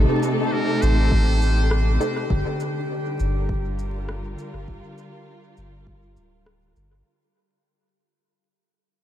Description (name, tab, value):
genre	ambient dub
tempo	101 BPM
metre	4/4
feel	straight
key	G minor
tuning	A4 = 436 Hz
part	dark studio string section	sustained chords	0.0-7.1 s	C3 to Bb4	-26 LUFS	equal	none
part	soft dub sub bass	bass	0.0-7.0 s	D1 to A1	-21 LUFS	equal	none
part	drifting glass-harmonics texture	texture	0.0-7.1 s	G4 to G5	-32 LUFS	left 1 dB	chorus, built-in reverb
part	electronic shaker and rim click	drums	0.2-6.9 s	none	-35 LUFS	left 1 dB	overdrive, dub echo
part	trumpet with metal mute	melody	0.5-2.0 s	Bb4 to C5	-31 LUFS	equal	dub echo
part	electronic kick drum	drums	1.1-6.0 s	none	-26 LUFS	equal	none
part	filtered dub chord stab	stabs	2.0-2.1 s	C4 to A4	-33 LUFS	right 1 dB	none
room	moderate huge ambient reverb, RT60 6.4 s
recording	dreamy mix soaked in reverb, vinyl crackle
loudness	-20 LUFS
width	side -11 dB against mid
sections	0.0-7.1 A section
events	fade-out 0.0-7.1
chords	0.0 Adim; 2.3 Gm7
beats	0.52 1.12 1.71 | 2.30 2.90 3.49 4.09 | 4.68 5.28 5.87 6.46